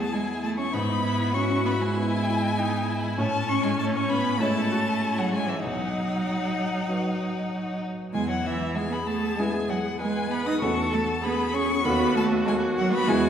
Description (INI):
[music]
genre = quick classical-period movement for piano quintet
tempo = 98 BPM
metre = 4/4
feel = straight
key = E major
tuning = A4 = 440 Hz
[part]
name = warm violin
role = melody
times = 0.0-13.3 s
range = E5 to D#6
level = -30 LUFS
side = left 4 dB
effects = none
[part]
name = dark cello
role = second line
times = 0.0-13.3 s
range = E3 to D#4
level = -27 LUFS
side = right 2 dB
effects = none
[part]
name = rich violin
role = second line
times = 0.0-12.9 s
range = C#4 to A4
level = -35 LUFS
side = left 3 dB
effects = none
[part]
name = warm grand piano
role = accompaniment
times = 0.0-13.3 s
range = B1 to C#5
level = -30 LUFS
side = equal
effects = none
[part]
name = warm viola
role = accompaniment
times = 0.0-13.3 s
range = C#4 to B4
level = -31 LUFS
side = equal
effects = none
[sound]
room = wet scoring stage reverb, RT60 1.8 s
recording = heard from further back in the room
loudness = -23 LUFS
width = side -8 dB against mid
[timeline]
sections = 0.0-13.3 A section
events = none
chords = 0.0 E; 0.7 E/G#; 3.2 Amaj7; 5.6 B; 8.1 E; 10.6 F#m7/E; 11.8 B7/D#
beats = 0.14 | 0.74 1.35 1.97 2.58 | 3.18 3.79 4.40 5.02 | 5.64 6.27 6.89 7.51 | 8.14 8.77 9.39 10.01 | 10.62 11.23 11.85 12.46 | 13.07